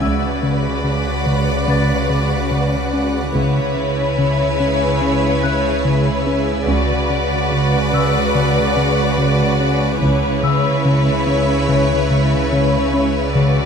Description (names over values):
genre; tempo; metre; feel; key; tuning
cinematic, suspense film score; 72 BPM; 4/4; straight; C# phrygian; A4 = 440 Hz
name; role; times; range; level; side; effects
rich studio violin section; melody; 0.0-13.7 s; C#5 to D5; -22 LUFS; left 4 dB; none
rich symphonic violin section; second line; 0.0-13.7 s; E4 to B4; -22 LUFS; left 1 dB; none
soft additive organ-like pad; sustained chords; 0.0-13.7 s; G#4 to D6; -26 LUFS; right 1 dB; ensemble chorus, built-in reverb
fat analog bass; riff; 0.0-13.6 s; C#3 to C#4; -20 LUFS; left 1 dB; none
rich studio double bass section; bass; 0.0-10.8 s; C#2; -24 LUFS; right 4 dB; none
warm studio cello section; bass; 0.0-13.7 s; C#3; -22 LUFS; right 3 dB; none
metallic inharmonic drone; drone; 0.0-13.7 s; C#2; -23 LUFS; right 1 dB; chorus, built-in reverb
celesta; texture; 0.0-13.4 s; E5 to A6; -28 LUFS; left 7 dB; none
cymbal swell; sound effects; 13.6-13.7 s; none; barely audible; none; none
room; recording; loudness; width
moderate scoring stage reverb, RT60 1.6 s; none; -14 LUFS; side -6 dB against mid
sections
0.0-13.7 A section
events
none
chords
0.0 Bm/C#; 3.3 C#m7; 6.7 Bm/C#; 10.0 C#m7